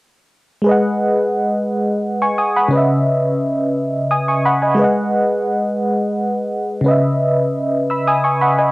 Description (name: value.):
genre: R&B.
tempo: 58 BPM (dotted quarters).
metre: 6/8.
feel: straight.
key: C# minor.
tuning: A4 = 439 Hz.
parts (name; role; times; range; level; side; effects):
FM electric piano with tremolo; solo; 0.6-8.7 s; C#3 to E6; -14 LUFS; equal; cassette tape.
room: light reverb.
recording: home recording on cassette.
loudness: -14 LUFS.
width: side -21 dB against mid.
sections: 0.7-8.7 A section.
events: none.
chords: 0.7 G#m7; 2.7 C#m9; 4.8 G#m7; 6.9 C#m9.